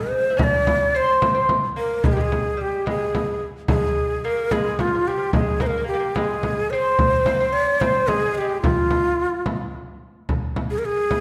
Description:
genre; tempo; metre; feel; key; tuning
Persian modal ensemble; 73 BPM (dotted quarters); 6/8; straight; unclear; A4 = 439 Hz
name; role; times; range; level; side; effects
breathy ney; melody; 0.0-11.2 s; F4 to E5-47c; -24 LUFS; equal; none
lute; second line; 0.0-9.7 s; F3 to E4; -28 LUFS; equal; none
frame drum; percussion; 0.4-11.2 s; none; -26 LUFS; equal; none
room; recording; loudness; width
wet scoring stage reverb, RT60 1.5 s; recorded in a church or concert hall; -21 LUFS; mono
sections
0.0-10.3 A section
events
none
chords
none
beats
| 0.39 1.22 | 2.04 2.87 | 3.69 4.52 | 5.34 6.17 | 6.99 7.82 | 8.64 9.46 | 10.29 11.11

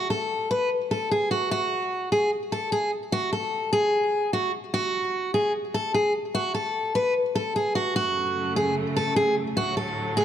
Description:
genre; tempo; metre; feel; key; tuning
hip hop; 149 BPM; 4/4; half-time; F# minor; A4 = 440 Hz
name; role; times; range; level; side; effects
picked steel-string acoustic guitar; melody; 0.0-10.2 s; F#4 to B4; -23 LUFS; equal; none
warm symphonic string section; sustained chords; 8.0-10.2 s; D2 to A3; -30 LUFS; right 2 dB; none
room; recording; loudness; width
moderate concert hall reverb, RT60 1.9 s, small room ambience; dark, warm production; -23 LUFS; side -10 dB against mid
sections
0.0-8.0 A section; 8.0-10.2 B section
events
none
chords
0.0 N.C.; 8.0 F#m; 9.6 D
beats
0.30 0.71 1.11 | 1.51 1.92 2.32 2.72 | 3.12 3.53 3.93 4.33 | 4.73 5.14 5.54 5.94 | 6.34 6.75 7.15 7.55 | 7.96 8.36 8.76 9.16 | 9.57 9.97

